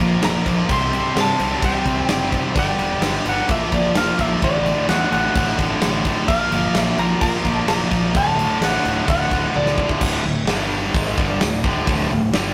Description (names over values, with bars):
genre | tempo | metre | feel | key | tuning
hard rock | 129 BPM | 4/4 | straight | unclear | A4 = 439 Hz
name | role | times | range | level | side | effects
lightly driven lead guitar | melody | 0.0-9.9 s | D5 to C6 | -25 LUFS | equal | none
heavy high-gain guitar | riff | 0.0-12.5 s | D2 to C5 | -30 LUFS | equal | distortion
sludgy distorted guitar | riff | 0.0-12.5 s | D2 to C4 | -28 LUFS | equal | overdrive
tight distorted guitar | riff | 0.0-12.5 s | D2 to C4 | -26 LUFS | equal | distortion
growling fingered electric bass | bass | 0.0-12.5 s | D1 to Bb2 | -29 LUFS | equal | overdrive
huge arena drum kit | drums | 0.0-12.4 s | crash cymbal, hi-hat, kick drum, snare drum, toms | -24 LUFS | equal | none
room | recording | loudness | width
moderate studio reverb, RT60 0.6 s | rough rehearsal-room recording, tube saturation | -19 LUFS | mono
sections
0.0-10.0 A section; 10.0-12.5 B section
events
drum fill 9.5-10.0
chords
0.0 Bb; 0.7 C; 2.6 G; 3.5 Bb; 4.4 D/A; 6.3 Bb; 8.1 D; 10.0 D5; 10.5 G5; 10.9 D5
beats
0.22 | 0.69 1.15 1.62 2.09 | 2.55 3.02 3.48 3.95 | 4.42 4.88 5.35 5.81 | 6.28 6.75 7.21 7.68 | 8.14 8.61 9.07 9.54 | 10.01 10.47 10.94 11.40 | 11.87 12.34